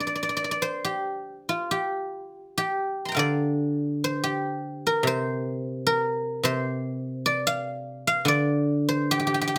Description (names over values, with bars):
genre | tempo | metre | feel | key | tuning
chinese traditional, Chinese solo plucked strings | 68-76 BPM | 4/4 | rubato | G yu mode | A4 = 437 Hz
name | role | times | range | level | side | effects
guzheng | solo | 0.0-9.6 s | C3 to C6 | -26 LUFS | equal | none
room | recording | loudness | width
light reverb | close, detailed microphones | -27 LUFS | mono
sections
0.0-9.6 A section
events
none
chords
none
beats
0.83 1.69 2.54 | 3.39 4.22 5.05 5.85 | 6.65 7.46 8.26 9.10